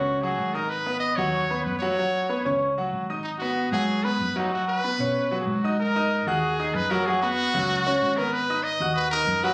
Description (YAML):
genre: latin, salsa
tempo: 189 BPM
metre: 4/4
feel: straight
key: G# minor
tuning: A4 = 440 Hz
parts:
  - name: bright trumpet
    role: melody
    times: 0.0-9.5 s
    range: D#4 to D#5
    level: -29 LUFS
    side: equal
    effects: none
  - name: bright concert grand piano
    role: accompaniment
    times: 0.0-9.5 s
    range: F#3 to F#6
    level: -28 LUFS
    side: equal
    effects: none
  - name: hollow-body short-scale fingered electric bass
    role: bass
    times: 0.0-9.5 s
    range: G#1 to B2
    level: -33 LUFS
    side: equal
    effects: none
room: light reverb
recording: recorded on a phone in the room, club reverb, compression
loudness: -25 LUFS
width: mono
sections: 0.0-5.8 A section; 5.8-9.5 B section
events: none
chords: 0.0 F#5; 0.7 G#m7; 2.0 F#sus4; 3.2 G#m7; 4.5 F#sus4; 5.8 G#5; 7.1 F#sus4; 8.3 G#m7